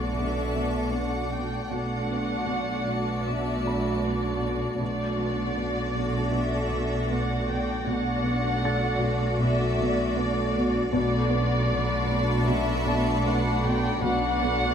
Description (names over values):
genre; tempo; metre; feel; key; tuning
cinematic, suspense film score; 78 BPM; 4/4; straight; B phrygian; A4 = 435 Hz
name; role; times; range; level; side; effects
muted studio violin section; melody; 0.0-14.7 s; D5 to G5; -32 LUFS; left 2 dB; none
muted studio violin section; second line; 0.0-14.7 s; F#4 to D5; -32 LUFS; left 2 dB; none
muted studio viola section; accompaniment; 0.0-14.7 s; A3 to D4; -31 LUFS; right 1 dB; none
icy glass pad; sustained chords; 0.0-14.7 s; F#4 to A5; -34 LUFS; right 1 dB; chorus, built-in reverb
muted studio cello section; riff; 0.0-14.6 s; B2 to B3; -33 LUFS; equal; none
muted studio cello section; bass; 0.0-14.7 s; B2; -32 LUFS; equal; none
muted studio double bass section; bass; 0.0-14.7 s; B1; -31 LUFS; right 1 dB; none
impact; sound effects; 0.0-1.7 s; none; barely audible; none; none
bright grand piano; texture; 0.0-14.7 s; A4 to A6; -40 LUFS; left 1 dB; none
muted studio violin section; texture; 4.8-14.7 s; B5 to A#6; -40 LUFS; left 2 dB; none
room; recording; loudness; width
moderate scoring stage reverb, RT60 2.0 s; none; -24 LUFS; side -8 dB against mid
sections
0.0-14.7 A section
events
impact 0.0-1.7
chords
0.0 Bm7